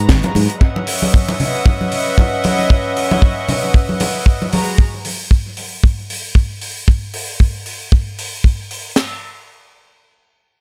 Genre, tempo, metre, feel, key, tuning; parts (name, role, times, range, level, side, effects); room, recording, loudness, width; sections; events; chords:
nu-disco, nu disco; 115 BPM; 4/4; swing 55% on 16ths; A4 = 440 Hz
warm studio string section; sustained chords; 0.0-4.8 s; G#3 to A#5; -22 LUFS; equal; sidechain pumping
fingered electric bass; bass; 0.0-0.5 s; G#1 to G#2; -18 LUFS; equal
tight funk drum kit; drums; 0.1-9.1 s; china cymbal, kick drum, snare drum; -15 LUFS; equal
tight funk drum kit; drums; 0.1-8.8 s; hi-hat, snare drum; -27 LUFS; equal; analog delay
congas; percussion; 0.2-4.6 s; -23 LUFS; equal; analog delay
light reverb, small room ambience; echo-heavy mix; -16 LUFS; mono
0.0-9.0 A section; 9.0-10.6 B section
0.0 G#m9; 0.6 C#m11; 4.5 G#m9; 9.0 N.C.